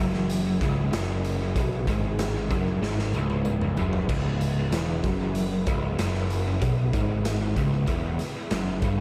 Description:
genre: psychedelic rock.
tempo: 95 BPM.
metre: 4/4.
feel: straight.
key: C# minor.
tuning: A4 = 440 Hz.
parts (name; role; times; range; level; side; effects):
overdriven tonewheel organ; sustained chords; 0.0-9.0 s; E3 to G#4; -41 LUFS; equal; slow rotary speaker, chorus vibrato.
overdriven electric guitar; riff; 0.0-9.0 s; C#2 to B2; -29 LUFS; equal; rotary speaker, tape echo.
fuzz picked electric bass; bass; 0.0-9.0 s; C#1 to B1; -33 LUFS; equal; overdrive.
raw garage drum kit; drums; 0.1-9.0 s; crash cymbal, hi-hat, kick drum, snare drum, toms; -32 LUFS; equal; tape echo.
tambourine; percussion; 0.6-9.0 s; none; -56 LUFS; equal; none.
room: light reverb.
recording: echo-heavy mix.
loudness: -26 LUFS.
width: mono.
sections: 0.0-9.0 A section.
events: drum fill 2.8-4.1.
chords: 0.0 C#m.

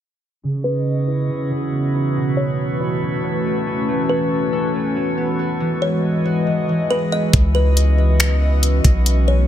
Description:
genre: hip hop, atmospheric cloud-rap.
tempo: 139 BPM.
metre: 4/4.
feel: half-time.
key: C# minor.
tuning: A4 = 440 Hz.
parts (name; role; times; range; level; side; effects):
dark analog pad; sustained chords; 0.4-9.5 s; E3 to D#5; -23 LUFS; left 1 dB; chorus, sidechain pumping, low-pass filter.
concert harp; arpeggios; 0.4-9.5 s; B2 to A4; -22 LUFS; right 1 dB; low-pass filter, ping-pong delay.
drifting glass-harmonics texture; texture; 1.0-9.5 s; G#3 to D#5; -28 LUFS; left 2 dB; chorus, built-in reverb.
kalimba; melody; 0.6-9.5 s; B4 to D#5; -26 LUFS; left 1 dB; low-pass filter, ping-pong delay.
long sustained 808-style bass; bass; 7.3-9.5 s; B1 to C#2; -14 LUFS; equal; none.
smooth R&B drum kit; drums; 7.3-9.2 s; finger snaps, hi-hat, kick drum; -16 LUFS; equal; none.
room: little or no reverb.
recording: none.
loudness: -16 LUFS.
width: side -11 dB against mid.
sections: 0.4-7.3 A section; 7.3-9.5 B section.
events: filter sweep 0.4-7.3.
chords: 0.4 C#m11; 2.2 B9sus4; 3.9 A69; 5.6 Emaj9; 7.3 C#m11.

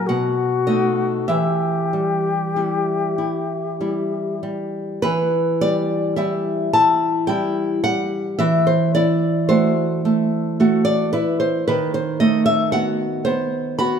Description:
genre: romantic duo for flute and classical guitar.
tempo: 46-57 BPM.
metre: 3/4.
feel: rubato.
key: E minor.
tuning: A4 = 440 Hz.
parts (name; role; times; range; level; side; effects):
mellow concert flute; melody; 0.0-4.4 s; F#4 to G4; -22 LUFS; left 6 dB; none.
nylon-string guitar; accompaniment; 0.0-14.0 s; B2 to B5; -18 LUFS; right 1 dB; none.
room: wet recital hall reverb, RT60 1.8 s.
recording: minimal, uncompressed stereo recording.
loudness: -17 LUFS.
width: side -7 dB against mid.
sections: 0.0-5.0 A section; 5.0-14.0 B section.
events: none.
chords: 0.1 B7; 1.3 Em; 8.4 F#m7b5/E; 11.7 B7/D#.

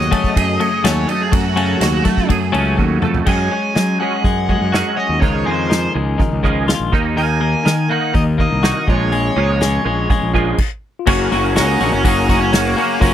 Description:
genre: indie rock.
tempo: 123 BPM.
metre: 4/4.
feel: straight.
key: unclear.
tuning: A4 = 440 Hz.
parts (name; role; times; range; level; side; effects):
overdriven electric guitar; melody; 0.0-13.1 s; Bb3 to Ab5; -21 LUFS; equal; slapback echo.
twelve-string electric guitar; riff; 0.0-13.1 s; Eb3 to Gb4; -20 LUFS; left 7 dB; none.
twelve-string electric guitar; riff; 0.0-13.1 s; Gb2 to Bb4; -21 LUFS; right 8 dB; ensemble chorus, slapback echo.
fuzz fingered electric bass; bass; 0.0-13.1 s; Gb1 to Gb3; -19 LUFS; equal; overdrive.
unplugged drum kit; drums; 0.0-13.1 s; crash cymbal, hi-hat, kick drum, ride cymbal, snare drum, toms; -19 LUFS; equal; none.
tine electric piano; second line; 11.0-13.1 s; F4 to Gb4; -25 LUFS; left 13 dB; none.
room: little or no reverb.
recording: dry, close 1970s-style studio recording.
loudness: -14 LUFS.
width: side -10 dB against mid.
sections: 0.0-3.3 A section; 3.3-11.1 B section; 11.1-13.1 C section.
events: overdriven electric guitar solo 0.0-3.3; drum fill 2.8-3.3; stop 10.6-11.1.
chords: 0.0 Gbmadd9; 3.3 Gbsus2; 5.2 Dbadd9; 6.9 Ebm; 8.9 Bbm7; 11.1 Gb.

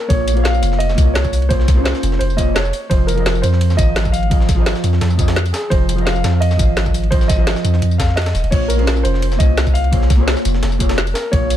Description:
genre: liquid drum and bass.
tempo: 171 BPM.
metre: 4/4.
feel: straight.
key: Bb minor.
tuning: A4 = 441 Hz.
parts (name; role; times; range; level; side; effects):
dark concert grand piano; melody; 0.0-11.6 s; Ab4 to F5; -22 LUFS; right 1 dB; digital delay.
hollow-body jazz guitar; accompaniment; 0.1-11.6 s; F3 to F5; -22 LUFS; equal; ping-pong delay.
long sustained 808-style bass; bass; 0.1-11.6 s; Eb1 to F2; -17 LUFS; equal; none.
breakbeat sampler-style drum kit; drums; 0.1-11.6 s; ride cymbal, snare drum; -29 LUFS; equal; high-pass filter on snare, high-pass filter on cymbals.
drum and bass drum kit; drums; 0.1-11.6 s; crash cymbal, hi-hat, snare drum, tambourine; -23 LUFS; left 1 dB; none.
electronic kick drum; drums; 0.1-11.4 s; none; -16 LUFS; equal; none.
room: digital ambience.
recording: none.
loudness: -13 LUFS.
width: side -11 dB against mid.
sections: 0.0-11.6 A section.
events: none.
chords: 0.0 Bbm9; 2.9 Fm7; 8.5 Bbm9.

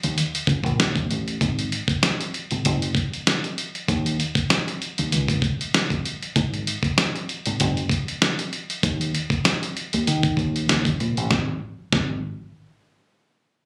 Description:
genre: hip hop, boom-bap hip-hop.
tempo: 97 BPM.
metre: 4/4.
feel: swing 55% on 16ths.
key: unclear.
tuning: A4 = 440 Hz.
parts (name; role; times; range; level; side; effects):
deep dub fingered electric bass; bass; 0.0-12.2 s; F#1 to D#3; -26 LUFS; equal; none.
dusty soul sampler-style drum kit; drums; 0.0-12.1 s; hi-hat, kick drum, snare drum; -25 LUFS; equal; none.
room: light reverb.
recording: recorded on a phone in the room, club reverb.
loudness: -23 LUFS.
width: mono.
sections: 0.0-1.4 A section; 1.4-11.3 B section; 11.3-13.7 C section.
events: none.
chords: none.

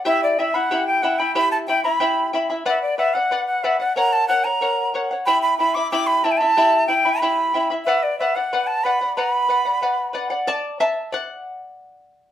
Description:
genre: andean folk, Andean ensemble.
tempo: 92 BPM.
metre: 2/4.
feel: straight.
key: unclear.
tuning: A4 = 440 Hz.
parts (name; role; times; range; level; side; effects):
charango; accompaniment; 0.0-12.3 s; E4 to B5; -22 LUFS; left 1 dB; none.
breathy bright quena; melody; 0.1-10.1 s; D5 to D6; -19 LUFS; right 1 dB; none.
room: wet studio reverb, RT60 0.6 s.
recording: band playing live in one room.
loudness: -17 LUFS.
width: side -11 dB against mid.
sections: 0.1-10.5 A section; 10.5-12.3 B section.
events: charango solo 10.5-12.3.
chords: 0.1 Em; 2.7 Bm; 4.0 F#; 5.3 Em; 7.9 Bm; 10.5 D; 11.8 N.C..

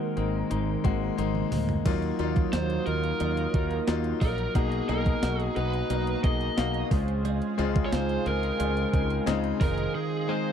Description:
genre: 1980s-style pop.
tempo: 89 BPM.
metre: 4/4.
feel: straight.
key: unclear.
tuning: A4 = 441 Hz.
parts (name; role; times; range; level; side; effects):
lead guitar through a small cranked amp; melody; 0.0-10.5 s; Ab4 to D#5; -32 LUFS; right 1 dB; overdrive, slapback echo.
clear concert grand piano; accompaniment; 0.0-10.5 s; B2 to F5; -31 LUFS; left 13 dB; none.
twelve-string electric guitar; riff; 0.0-10.5 s; Eb3 to F#4; -34 LUFS; right 9 dB; analog chorus, slapback echo.
fretless electric bass; bass; 0.2-9.9 s; F1 to Eb2; -31 LUFS; right 1 dB; lush chorus.
clean 12-bit digital drum machine; drums; 0.2-9.9 s; crash cymbal, hi-hat, kick drum, snare drum, toms; -27 LUFS; right 1 dB; overdrive.
chorused pulse-width pad; sustained chords; 2.3-10.5 s; Gb3 to Eb6; -38 LUFS; right 3 dB; none.
analog synth brass; stabs; 1.9-10.5 s; Gb3 to A#5; -39 LUFS; right 9 dB; chorus.
cowbell; percussion; 1.9-9.8 s; none; -42 LUFS; right 22 dB; none.
room: little or no reverb.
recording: dry, close 1970s-style studio recording.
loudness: -24 LUFS.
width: side -8 dB against mid.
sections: 0.0-1.9 A section; 1.9-10.5 B section.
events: drum fill 1.2-1.9; break 9.9-10.5.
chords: 0.0 Abadd9; 1.9 Ebmadd9; 4.6 Bmaj7; 6.9 Dbmaj7; 9.6 Fm7.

